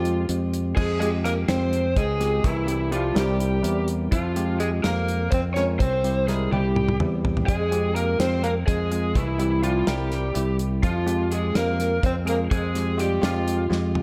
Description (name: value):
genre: progressive instrumental, band music in an uneven meter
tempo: 250 BPM (eighths)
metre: 7/8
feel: straight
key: F harmonic minor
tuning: A4 = 441 Hz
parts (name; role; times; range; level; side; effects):
- lead guitar through a small cranked amp; melody; 0.0-13.7 s; E4 to Db5; -30 LUFS; equal; overdrive, slapback echo, digital delay
- clear alto saxophone; second line; 0.0-13.7 s; E3 to Db4; -32 LUFS; equal; slapback echo
- bell-like tine electric piano; accompaniment; 0.0-14.0 s; G3 to Bb4; -31 LUFS; equal; none
- fingered electric bass; bass; 0.0-14.0 s; C2 to F2; -28 LUFS; equal; none
- damped 70s drum kit; drums; 0.1-14.0 s; crash cymbal, hi-hat, kick drum, snare drum, toms; -29 LUFS; equal; none
room: moderate recital hall reverb, RT60 1.4 s, small room ambience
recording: big arena sound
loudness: -23 LUFS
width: mono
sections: 0.8-14.0 A section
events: drum fill 6.5-7.5, 13.7-14.0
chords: 0.0 Fmadd9; 2.4 C; 4.1 Fmadd9; 5.8 C; 7.5 Fmadd9; 9.2 C; 10.8 Fmadd9